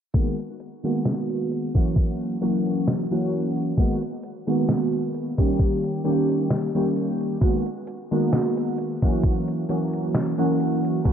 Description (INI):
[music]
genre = vaporwave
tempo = 66 BPM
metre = 4/4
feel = swing 54% on 16ths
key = G# minor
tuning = A4 = 439 Hz
[part]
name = warbly lo-fi synth keys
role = accompaniment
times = 0.1-11.1 s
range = D#3 to G4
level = -22 LUFS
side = equal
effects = lush chorus, analog delay
[part]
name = detuned 8-bit digital drum machine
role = drums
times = 0.1-11.1 s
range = hi-hat, snare drum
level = -27 LUFS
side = equal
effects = none
[part]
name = electronic kick drum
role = drums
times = 0.1-11.1 s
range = none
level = -21 LUFS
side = equal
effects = none
[sound]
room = light reverb, digital ambience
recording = dry, gritty hardware recording, transformer saturation, cassette tape, low-pass filter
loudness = -21 LUFS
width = side -8 dB against mid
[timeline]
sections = 0.1-11.1 A section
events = filter sweep 0.1-11.1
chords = 0.1 G#m9; 2.0 F#7; 3.8 G#m9; 5.6 D#7; 7.4 G#m9; 9.2 F#7